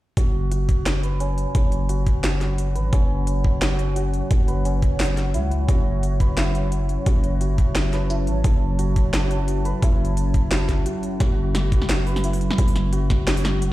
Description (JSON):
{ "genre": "half-time drum and bass", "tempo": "174 BPM", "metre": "4/4", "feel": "swing 55% on 16ths, half-time", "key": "F# minor", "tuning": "A4 = 445 Hz", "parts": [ { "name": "dark analog pad", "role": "sustained chords", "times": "1.1-13.7 s", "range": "F#3 to A5", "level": "-30 LUFS", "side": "equal", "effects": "chorus, sidechain pumping" }, { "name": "santur", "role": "arpeggios", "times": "0.2-13.7 s", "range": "C#4 to B4", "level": "-30 LUFS", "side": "right 2 dB", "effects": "low-pass filter, ping-pong delay" }, { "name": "growling 808-style bass", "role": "bass", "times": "0.2-13.7 s", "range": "F#1 to C#2", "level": "-22 LUFS", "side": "equal", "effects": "none" }, { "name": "drum and bass drum kit", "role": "drums", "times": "0.2-13.7 s", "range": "hi-hat, snare drum", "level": "-27 LUFS", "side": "equal", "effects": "none" }, { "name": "electronic kick drum", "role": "drums", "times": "0.2-13.2 s", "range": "none", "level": "-20 LUFS", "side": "equal", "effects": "none" } ], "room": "digital ambience", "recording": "played on a big sound system in a bare room, large studio reverb", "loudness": "-19 LUFS", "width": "side -16 dB against mid", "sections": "0.2-13.7 A section", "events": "filter sweep on santur 0.2-13.7; break 10.9-11.2", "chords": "0.2 F#5", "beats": "| 0.17 0.52 0.86 1.20 | 1.55 1.89 2.24 2.58 | 2.93 3.27 3.62 3.96 | 4.31 4.65 5.00 5.34 | 5.69 6.03 6.38 6.72 | 7.07 7.41 7.76 8.10 | 8.45 8.79 9.13 9.48 | 9.82 10.17 10.52 10.86 | 11.20 11.55 11.89 12.24 | 12.58 12.93 13.27 13.62" }